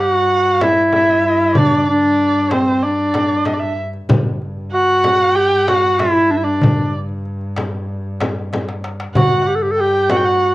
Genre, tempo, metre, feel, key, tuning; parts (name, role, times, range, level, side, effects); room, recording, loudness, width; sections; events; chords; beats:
Turkish makam ensemble; 95 BPM; 4/4; straight; A4 = 440 Hz
clear clarinet; melody; 0.0-10.5 s; C4 to A4; -14 LUFS; equal; cassette tape
dark erhu; second line; 0.0-10.5 s; C5 to G5; -19 LUFS; right 2 dB; cassette tape
clear double bass; drone; 0.0-10.5 s; G2; -26 LUFS; equal; stereo widening, cassette tape
darbuka; percussion; 0.6-10.3 s; -22 LUFS; equal
frame drum; percussion; 0.6-10.2 s; -20 LUFS; left 1 dB
wet studio reverb, RT60 0.6 s; home recording on cassette; -13 LUFS; side -17 dB against mid
0.0-10.5 A section
drum fill 8.5-9.2
0.30 0.93 | 1.56 2.20 2.83 3.46 | 4.10 4.73 5.36 6.00 | 6.63 7.26 7.89 8.53 | 9.16 9.79 10.43